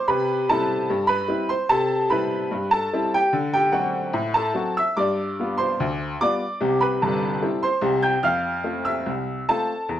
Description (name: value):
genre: ragtime piano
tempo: 73 BPM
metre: 2/4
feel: straight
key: C major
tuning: A4 = 440 Hz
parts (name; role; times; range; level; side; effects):
- bright upright piano; solo; 0.0-10.0 s; G1 to G6; -20 LUFS; equal; none
room: moderate studio reverb, RT60 0.8 s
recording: worn, warbling old tape, cassette tape, warbly pitch drift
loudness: -20 LUFS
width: side -11 dB against mid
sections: 0.0-10.0 A section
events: none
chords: 0.1 C; 3.3 D7; 5.0 G7; 6.6 C; 8.2 F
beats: | 0.06 0.88 | 1.70 2.52 | 3.33 4.15 | 4.97 5.79 | 6.61 7.42 | 8.24 9.06 | 9.88